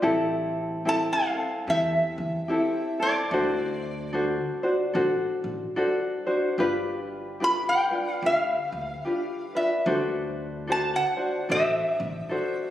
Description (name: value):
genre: Hawaiian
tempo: 73 BPM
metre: 4/4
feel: swing 61% on 8ths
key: unclear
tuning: A4 = 440 Hz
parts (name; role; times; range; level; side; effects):
- tenor ukulele; accompaniment; 0.0-12.7 s; C4 to C5; -26 LUFS; left 1 dB; none
- upright bass; bass; 0.0-12.2 s; G1 to E2; -36 LUFS; equal; none
- metal-body resonator slide guitar; melody; 0.9-12.7 s; D5 to B5; -26 LUFS; equal; none
room: wet concert hall reverb, RT60 2.3 s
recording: recorded on a phone in the room, studio reverb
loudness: -24 LUFS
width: side -12 dB against mid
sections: 0.0-12.7 A section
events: none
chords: 0.0 Am7; 3.3 D7; 6.6 G7; 9.9 D7